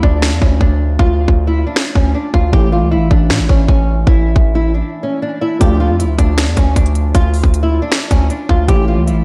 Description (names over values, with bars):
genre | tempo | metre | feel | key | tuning
hip hop, trap | 156 BPM | 4/4 | half-time | D harmonic minor | A4 = 438 Hz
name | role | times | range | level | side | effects
nylon-string guitar | melody | 0.0-9.2 s | C#4 to G4 | -21 LUFS | equal | subtle chorus, diffuse ambient delay
felt-muted upright piano | accompaniment | 0.0-9.2 s | E3 to C#5 | -25 LUFS | equal | ensemble chorus
hard-hitting 808-style bass | bass | 0.0-9.2 s | A1 to A2 | -17 LUFS | equal | none
trap drum kit | drums | 0.0-9.2 s | finger snaps, hi-hat, kick drum, snare drum | -15 LUFS | equal | none
room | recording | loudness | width
light reverb, small room ambience | none | -14 LUFS | mono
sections
0.0-9.2 A section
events
break 0.0-5.6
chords
0.0 Dm; 2.5 A; 5.6 Dm; 8.7 A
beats
0.22 0.61 | 0.99 1.38 1.76 2.15 | 2.53 2.92 3.30 3.69 | 4.07 4.45 4.84 5.22 | 5.61 5.99 6.38 6.76 | 7.15 7.53 7.92 8.30 | 8.69 9.07